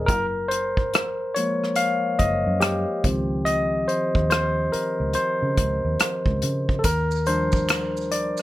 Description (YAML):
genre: R&B, neo-soul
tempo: 71 BPM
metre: 4/4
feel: swing 62% on 16ths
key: unclear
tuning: A4 = 443 Hz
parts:
  - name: barky tine electric piano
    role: accompaniment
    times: 0.0-8.4 s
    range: Eb3 to F5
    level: -23 LUFS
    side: left 1 dB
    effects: overdrive
  - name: vintage muted fingered electric bass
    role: bass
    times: 0.0-8.3 s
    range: Gb1 to Db3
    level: -27 LUFS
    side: right 1 dB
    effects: none
  - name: unplugged drum kit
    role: drums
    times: 0.1-8.4 s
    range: hi-hat, kick drum, rim click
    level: -24 LUFS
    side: equal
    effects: none
  - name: maracas and finger snaps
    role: percussion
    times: 6.8-8.4 s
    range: none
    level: -37 LUFS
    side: right 6 dB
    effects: none
room: light reverb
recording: none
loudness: -20 LUFS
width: side -15 dB against mid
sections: 0.0-8.4 A section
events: tine electric piano solo 0.0-8.4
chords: 0.1 Gbmaj9; 3.0 Dbmaj9; 6.8 Ebmaj9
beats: | 0.09 0.93 1.78 2.62 | 3.47 4.31 5.16 6.00 | 6.85 7.69